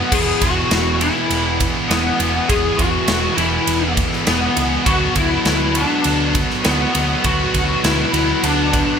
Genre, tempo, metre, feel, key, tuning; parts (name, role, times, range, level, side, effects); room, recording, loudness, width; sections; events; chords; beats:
hard rock; 101 BPM; 4/4; straight; B dorian; A4 = 438 Hz
lead guitar through a small cranked amp; melody; 0.0-9.0 s; B3 to G#4; -20 LUFS; left 2 dB; overdrive, ensemble chorus
sludgy distorted guitar; riff; 0.0-9.0 s; E2 to B3; -26 LUFS; right 12 dB; overdrive
tight distorted guitar; riff; 0.0-9.0 s; E2 to B3; -23 LUFS; left 10 dB; distortion
tight distorted guitar; riff; 0.0-9.0 s; D3 to G#4; -25 LUFS; right 1 dB; distortion
hollow-body short-scale fingered electric bass; bass; 0.1-8.8 s; E1 to D2; -23 LUFS; equal
big rock drum kit; drums; 0.1-8.9 s; crash cymbal, kick drum, ride cymbal, snare drum; -20 LUFS; right 1 dB; gated reverb
light reverb, studio ambience; bright 1980s-style digital production; -15 LUFS; side -7 dB against mid
0.0-9.0 A section
0.1 E; 4.9 Bm/D
| 0.12 0.71 1.30 1.90 | 2.49 3.09 3.68 4.28 | 4.87 5.46 6.06 6.65 | 7.25 7.84 8.44